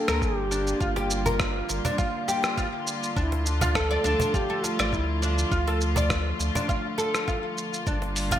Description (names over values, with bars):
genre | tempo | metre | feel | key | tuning
organic downtempo | 102 BPM | 4/4 | swing 54% on 16ths | D minor | A4 = 440 Hz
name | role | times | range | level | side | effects
mellow duduk | melody | 0.0-8.4 s | D4 to A4 | -31 LUFS | right 1 dB | ping-pong delay
warm studio string section | sustained chords | 0.0-8.4 s | D3 to F4 | -31 LUFS | left 1 dB | vintage 12-bit sampler grit, sidechain pumping
oud | arpeggios | 0.1-8.4 s | D4 to D5 | -29 LUFS | left 1 dB | ping-pong delay
warm sub bass | bass | 0.1-8.4 s | G1 to D2 | -28 LUFS | equal | none
dusty soul sampler-style drum kit | drums | 0.1-8.4 s | hi-hat, rim click, shaker | -31 LUFS | right 1 dB | gated reverb
electronic kick drum | drums | 0.2-8.0 s | none | -30 LUFS | equal | none
cajon | percussion | 1.0-8.4 s | none | -33 LUFS | right 2 dB | none
room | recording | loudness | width
moderate plate reverb, RT60 1.4 s | bright 1980s-style digital production | -23 LUFS | side -11 dB against mid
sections
0.0-8.4 A section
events
none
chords
0.0 Gm7; 3.2 Dm; 7.9 Gm7